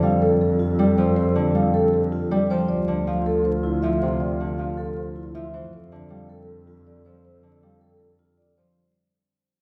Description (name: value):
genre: classical, minimalist pattern music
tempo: 158 BPM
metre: 4/4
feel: straight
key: unclear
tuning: A4 = 441 Hz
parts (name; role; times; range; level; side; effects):
- marimba with soft mallets; melody; 0.0-8.6 s; A4 to F5; -32 LUFS; equal; none
- bright wooden-headed alto flute; second line; 0.0-8.5 s; F4 to A4; -34 LUFS; equal; none
- Celtic harp; accompaniment; 0.0-8.8 s; C3 to G3; -26 LUFS; equal; none
- rich double bass; bass; 0.0-8.6 s; D2 to F2; -30 LUFS; equal; none
- vibraphone with soft mallets; arpeggios; 0.2-8.8 s; E4 to C5; -28 LUFS; equal; none
room: wet recital hall reverb, RT60 1.6 s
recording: heard from further back in the room, vinyl crackle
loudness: -22 LUFS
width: mono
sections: 0.0-8.8 A section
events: fade-out 0.0-8.8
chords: 0.0 Fadd9; 2.7 Dm7; 5.7 Fadd9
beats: 0.03 0.41 0.79 | 1.17 1.55 1.93 2.31 | 2.69 3.07 3.45 3.83 | 4.21 4.58 4.96 5.34 | 5.72 6.10 6.48 6.86 | 7.24 7.62 8.00 8.38